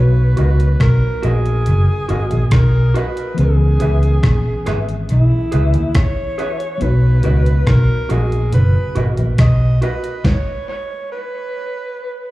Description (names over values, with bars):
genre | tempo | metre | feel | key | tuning
lovers rock reggae | 70 BPM | 4/4 | straight | B major | A4 = 440 Hz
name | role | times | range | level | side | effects
breathy alto saxophone | melody | 0.0-12.3 s | E4 to D#5 | -24 LUFS | equal | tape echo, slapback echo
mellow tine electric piano | accompaniment | 0.0-10.3 s | E3 to G#4 | -26 LUFS | left 2 dB | medium stereo tremolo
vintage muted fingered electric bass | bass | 0.0-9.8 s | F#1 to D#2 | -13 LUFS | equal | none
electric guitar through a small old amp | stabs | 0.4-9.9 s | F#4 to E5 | -27 LUFS | right 2 dB | spring reverb, slapback echo
detuned 8-bit digital drum machine | drums | 0.4-10.5 s | hi-hat, kick drum, rim click, snare drum | -17 LUFS | equal | none
congas | percussion | 6.8-9.2 s | none | -25 LUFS | right 2 dB | none
room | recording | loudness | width
digital ambience | live gig heard through the venue's PA, club reverb | -13 LUFS | side -17 dB against mid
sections
0.0-12.3 A section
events
stop 10.2-12.3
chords
0.0 Bmaj7; 3.4 C#m7; 6.8 Bmaj7; 10.2 N.C.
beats
0.80 1.66 2.52 | 3.38 4.23 5.09 5.95 | 6.81 7.67 8.53 9.39 | 10.25 11.11 11.97